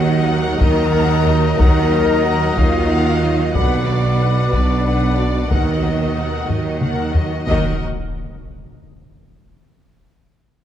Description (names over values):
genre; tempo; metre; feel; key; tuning
cinematic, epic orchestral film score; 61 BPM (dotted quarters); 6/8; straight; Eb harmonic minor; A4 = 442 Hz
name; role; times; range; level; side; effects
warm symphonic violin section; melody; 0.0-7.8 s; D5 to Gb5; -27 LUFS; left 5 dB; none
rich chamber violin section; second line; 0.0-7.8 s; D5 to Bb5; -28 LUFS; left 4 dB; none
rich symphonic viola section; accompaniment; 0.0-7.8 s; D3 to B4; -29 LUFS; equal; none
mellow trombone section; sustained chords; 0.0-7.8 s; B2 to Bb3; -29 LUFS; right 2 dB; none
rich symphonic string section; sustained chords; 0.0-7.8 s; Gb3 to F#5; -28 LUFS; equal; none
warm French horn section; sustained chords; 0.0-7.8 s; D4 to Bb4; -23 LUFS; left 5 dB; none
mellow trumpet; stabs; 0.0-7.8 s; D5 to Eb5; -26 LUFS; right 1 dB; none
clear symphonic double bass section; bass; 0.0-7.8 s; B1 to Eb2; -22 LUFS; right 2 dB; none
mellow tuba; bass; 0.0-7.8 s; B1 to Eb2; -22 LUFS; right 3 dB; none
rich symphonic cello section; bass; 0.0-7.8 s; B2 to Eb3; -23 LUFS; right 4 dB; none
timpani; percussion; 0.0-0.6, 5.5-7.8 s; none; barely audible; none; none
taiko ensemble; drums; 0.6-7.4 s; none; -19 LUFS; left 1 dB; none
impact; sound effects; 7.5-9.4 s; none; -26 LUFS; left 1 dB; none
room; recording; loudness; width
moderate scoring stage reverb, RT60 1.9 s; dark, warm production; -14 LUFS; side -10 dB against mid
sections
0.0-7.5 A section; 7.5-9.4 B section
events
drum fill 6.5-7.5; impact 7.5-9.4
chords
0.0 Ebm; 3.5 Bm; 5.5 Ebm